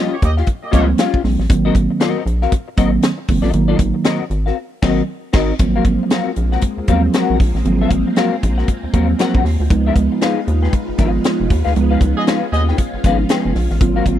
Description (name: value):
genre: funk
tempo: 117 BPM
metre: 4/4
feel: swing 60% on 16ths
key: unclear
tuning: A4 = 440 Hz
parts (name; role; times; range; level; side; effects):
- semi-hollow electric guitar; accompaniment; 0.0-14.1 s; C4 to G5; -22 LUFS; left 10 dB; ensemble chorus
- mellow tine electric piano; stabs; 0.0-14.2 s; Eb3 to F4; -18 LUFS; right 4 dB; analog chorus
- warm horn section; second line; 0.1-0.9, 12.2-12.6 s; Bb3 to Eb5; -24 LUFS; right 1 dB; none
- rubbery square bass; bass; 0.2-14.2 s; F1 to Eb2; -17 LUFS; equal; none
- tight funk drum kit; drums; 0.2-14.2 s; crash cymbal, hi-hat, kick drum, snare drum; -17 LUFS; equal; none
- string machine, violins; sustained chords; 5.6-14.2 s; Gb3 to F4; -24 LUFS; equal; phaser, ensemble chorus
room: studio ambience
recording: none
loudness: -14 LUFS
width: side -11 dB against mid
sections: 0.0-5.6 A section; 5.6-14.2 B section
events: band accent 4.6-5.6, 11.8-13.8; silent gap 5.1-5.6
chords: 0.0 Eb9; 1.5 Ab9; 5.6 Ab13; 9.7 Db9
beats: 0.47 0.98 | 1.50 2.01 2.52 3.03 | 3.55 4.06 4.57 5.08 | 5.60 6.11 6.62 7.14 | 7.65 8.16 8.68 9.19 | 9.70 10.22 10.73 11.24 | 11.76 12.27 12.78 13.30 | 13.81